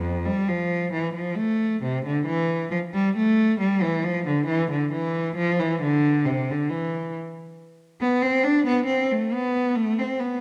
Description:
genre	classical, baroque-style suite movement for unaccompanied cello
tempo	68 BPM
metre	3/4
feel	rubato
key	A minor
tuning	A4 = 441 Hz
part	warm cello	solo	0.0-10.4 s	F2 to D4	-24 LUFS	equal	none
room	moderate scoring stage reverb, RT60 1.5 s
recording	dark, warm production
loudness	-24 LUFS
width	mono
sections	0.0-10.4 A section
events	none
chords	none

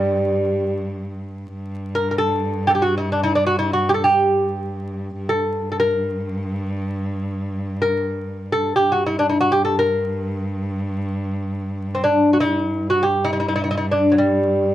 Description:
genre	Persian modal ensemble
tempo	free time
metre	none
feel	none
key	G avaz esfahan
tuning	A4 = 440 Hz
part	lute	melody	0.0-14.7 s	F#3 to Bb4	-18 LUFS	equal	none
part	rich cello	drone	0.0-14.7 s	G2	-26 LUFS	equal	none
room	moderate small room reverb, RT60 0.5 s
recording	vinyl crackle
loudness	-18 LUFS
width	side -13 dB against mid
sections	0.0-1.5 A section; 1.5-14.7 A section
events	none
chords	none

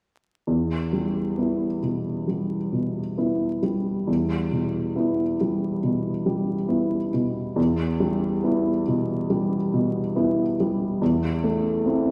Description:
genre	classical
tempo	69 BPM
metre	4/4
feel	rubato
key	E minor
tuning	A4 = 440 Hz
part	dark grand piano	accompaniment	0.5-12.1 s	E2 to E4	-24 LUFS	equal	none
room	wet scoring stage reverb, RT60 2.0 s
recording	vinyl crackle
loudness	-24 LUFS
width	mono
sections	0.5-12.1 A section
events	none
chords	0.5 Em; 11.0 Am/E

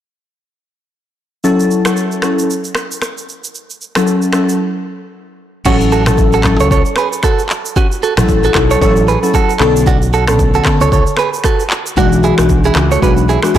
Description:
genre	afrobeats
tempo	114 BPM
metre	4/4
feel	swing 58% on 16ths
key	A major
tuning	A4 = 439 Hz
part	glassy digital keys	accompaniment	1.4-13.6 s	D3 to A4	-14 LUFS	left 2 dB	chorus
part	afro-pop drum kit	drums	1.4-13.6 s	crash cymbal, finger snaps, handclaps, kick drum, rim click, shaker, toms	-16 LUFS	equal	soft clipping on snare
part	direct-recorded clean electric guitar	riff	5.7-13.6 s	C#4 to C#5	-16 LUFS	right 7 dB	spring reverb, analog delay
part	fingered electric bass	bass	5.7-13.6 s	A1 to C#2	-15 LUFS	equal	tube saturation
room	light reverb, digital ambience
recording	blown-out, overdriven recording, overdrive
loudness	-10 LUFS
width	side -11 dB against mid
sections	1.4-5.7 A section; 5.7-13.6 B section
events	break 4.6-5.7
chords	1.4 A6; 5.4 N.C.; 5.7 A6; 9.6 Bm9; 12.0 E9/B

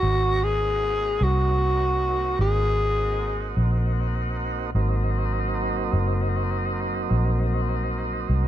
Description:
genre	blues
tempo	51 BPM (dotted quarters)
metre	12/8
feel	straight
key	Ab mixolydian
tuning	A4 = 440 Hz
part	growling tenor saxophone	melody	0.0-3.5 s	Gb4 to Ab4	-23 LUFS	equal	none
part	tonewheel organ	sustained chords	0.0-8.5 s	Gb3 to Gb4	-29 LUFS	right 1 dB	slow rotary speaker
part	vintage muted fingered electric bass	bass	0.0-8.5 s	Gb1 to C2	-24 LUFS	equal	none
room	little or no reverb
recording	nothing above 10.6 kHz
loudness	-21 LUFS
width	side -11 dB against mid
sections	0.0-8.5 A section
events	none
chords	0.0 Ab7

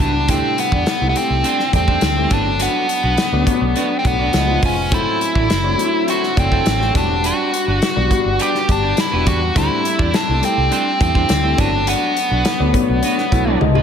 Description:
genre	polished 1980s jazz-funk pop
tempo	104 BPM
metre	4/4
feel	straight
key	unclear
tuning	A4 = 440 Hz
part	nasal lead guitar with a parked wah	melody	0.0-13.6 s	B3 to G4	-19 LUFS	equal	overdrive, slapback echo
part	warm baby grand piano	accompaniment	0.0-13.8 s	C3 to G4	-22 LUFS	left 3 dB	wide subtle chorus, slapback echo
part	electric guitar at the edge of break-up	riff	0.0-13.8 s	C#4 to D5	-25 LUFS	right 4 dB	lush chorus, slapback echo
part	vintage muted fingered electric bass	bass	0.0-13.8 s	E1 to E2	-20 LUFS	right 1 dB	none
part	modern studio drum kit	drums	0.0-13.8 s	hi-hat, kick drum, snare drum, toms	-20 LUFS	equal	none
room	moderate lush hall reverb, RT60 1.9 s, small room reverb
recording	big arena sound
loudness	-14 LUFS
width	side -8 dB against mid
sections	0.0-13.8 A section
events	drum fill 13.6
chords	0.3 D7sus4; 2.3 Gmaj7; 4.3 C#7; 4.9 F#m7b5; 6.9 Em7; 9.6 D7sus4; 11.6 Gmaj7

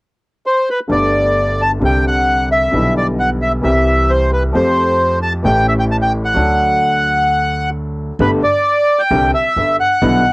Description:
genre	tango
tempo	132 BPM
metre	4/4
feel	rubato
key	G major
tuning	A4 = 440 Hz
part	bandoneon	melody	0.5-10.3 s	B4 to A5	-14 LUFS	equal	cassette tape
part	bright upright piano	accompaniment	0.9-10.2 s	G1 to A4	-18 LUFS	left 1 dB	cassette tape
part	upright bass	bass	0.9-10.2 s	G1 to F2	-19 LUFS	equal	none
room	little or no reverb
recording	home recording on cassette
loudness	-12 LUFS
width	side -24 dB against mid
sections	0.9-8.2 A section; 8.2-10.3 B section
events	none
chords	0.0 N.C.; 0.9 Gadd9; 1.8 Csus2; 2.7 G6/B; 3.6 C; 4.6 Fadd9; 5.5 A7; 6.4 D; 8.2 Gadd9; 9.1 Csus2

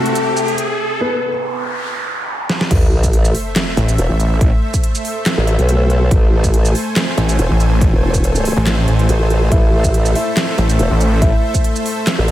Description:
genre	heavy wobble dubstep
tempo	141 BPM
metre	4/4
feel	swing 54% on 16ths, half-time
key	A harmonic minor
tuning	A4 = 441 Hz
part	felt-muted upright piano	melody	0.0-1.3, 9.5-11.5 s	A3 to E5	-21 LUFS	left 2 dB	analog delay
part	supersaw pad	sustained chords	0.0-12.3 s	C3 to G#5	-22 LUFS	equal	sidechain pumping
part	riser, noise sweep and sub drop	sound effects	0.0-4.4 s	none	-21 LUFS	equal	none
part	dubstep drum kit	drums	0.1-12.3 s	crash cymbal, handclaps, hi-hat, shaker, snare drum	-21 LUFS	right 1 dB	studio reverb
part	formant-sweep wobble bass	bass	2.7-12.3 s	E1 to B1	-14 LUFS	equal	chorus, overdrive
part	electronic kick drum	drums	2.7-11.6 s	none	-14 LUFS	equal	studio reverb
part	snarling distorted saw bass	bass	3.8-4.5, 7.2-11.3 s	A1	-14 LUFS	equal	distortion, overdrive
room	light reverb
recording	none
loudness	-13 LUFS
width	side -13 dB against mid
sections	0.0-2.7 A section; 2.7-12.3 B section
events	build-up 0.0-2.7; riser 0.0-1.0; break 1.0-2.7; noise sweep 1.0-2.7; drum fill 2.5; drop 2.7-12.3; impact 2.7-4.4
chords	0.0 Am/C; 1.0 N.C.; 2.7 Am

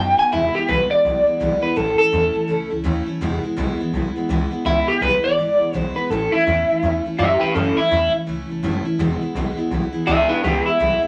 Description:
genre	rockabilly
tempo	166 BPM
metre	4/4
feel	swing 61% on 8ths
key	E major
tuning	A4 = 442 Hz
part	electric guitar through a small old amp	melody	0.0-11.0 s	B3 to G#5	-20 LUFS	equal	phaser
part	picked steel-string acoustic guitar	accompaniment	0.0-11.1 s	E2 to F#4	-26 LUFS	equal	none
part	upright bass	bass	0.0-11.1 s	E1 to F#2	-28 LUFS	equal	none
room	moderate studio reverb, RT60 0.6 s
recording	none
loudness	-20 LUFS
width	mono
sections	0.3-11.1 A section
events	none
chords	0.3 E; 1.8 A; 3.2 E; 6.1 A; 9.0 E

